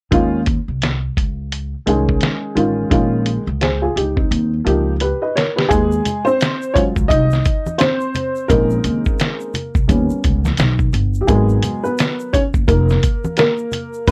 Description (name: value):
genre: hip hop, jazz-hop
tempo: 86 BPM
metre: 4/4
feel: swing 60% on 16ths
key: unclear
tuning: A4 = 441 Hz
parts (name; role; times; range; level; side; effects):
- dark upright piano; accompaniment; 0.1-14.1 s; Eb3 to Eb5; -20 LUFS; equal; none
- upright bass; bass; 0.1-14.1 s; F1 to Eb2; -21 LUFS; equal; tube saturation
- lo-fi sampler-style drum kit; drums; 0.1-14.1 s; hi-hat, kick drum, snare drum; -21 LUFS; equal; none
- egg shaker and congas; percussion; 5.7-14.1 s; none; -31 LUFS; equal; none
room: light reverb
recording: worn, warbling old tape, cassette tape, warbly pitch drift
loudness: -17 LUFS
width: mono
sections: 0.1-5.7 A section; 5.7-14.1 B section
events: drum fill 4.3-5.7; upright piano solo 5.7-14.1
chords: 0.1 Eb9sus4; 2.9 Bbm7; 4.3 Eb7; 5.7 Ebmadd9; 8.5 Bbm11; 9.9 Eb7b13 (rootless); 11.3 Abm9